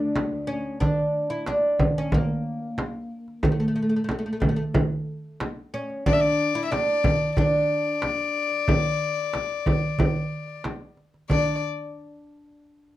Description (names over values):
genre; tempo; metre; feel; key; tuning
Arabic maqam ensemble; 92 BPM; 4/4; straight; unclear; A4 = 440 Hz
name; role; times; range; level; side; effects
oud; melody; 0.0-11.6 s; A3 to E4; -26 LUFS; equal; none
rich studio cello section; drone; 0.0-0.9 s; D2; -37 LUFS; left 2 dB; none
darbuka; percussion; 0.0-11.6 s; none; -27 LUFS; right 2 dB; none
frame drum; percussion; 0.2-11.6 s; none; -26 LUFS; equal; none
rich violin; second line; 6.1-11.6 s; D5 to E5; -26 LUFS; left 8 dB; none
room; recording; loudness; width
moderate studio ambience, RT60 0.5 s; dark, warm production; -22 LUFS; side -14 dB against mid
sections
0.8-11.3 A section; 11.3-13.0 B section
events
none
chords
none